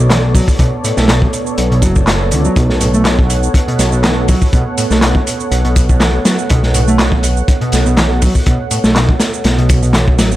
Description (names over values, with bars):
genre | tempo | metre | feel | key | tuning
breakbeat, breaks | 122 BPM | 4/4 | swing 54% on 16ths | B minor | A4 = 440 Hz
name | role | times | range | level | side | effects
dark analog pad | sustained chords | 0.0-10.4 s | B3 to F#5 | -20 LUFS | right 2 dB | chorus, sidechain pumping
overdriven picked electric bass | riff | 0.0-10.3 s | A2 to A3 | -17 LUFS | equal | vintage 12-bit sampler grit, tape echo
fat analog bass | bass | 0.0-10.4 s | F#1 to C#2 | -14 LUFS | equal | none
crunchy breakbeat drum kit | drums | 0.1-10.3 s | hi-hat, kick drum, snare drum | -14 LUFS | equal | none
house drum kit | drums | 0.1-10.4 s | handclaps, hi-hat, shaker | -21 LUFS | right 1 dB | none
room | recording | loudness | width
light reverb, small room ambience | dark, warm production | -10 LUFS | side -15 dB against mid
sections
0.0-10.4 A section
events
none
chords
0.0 Bm9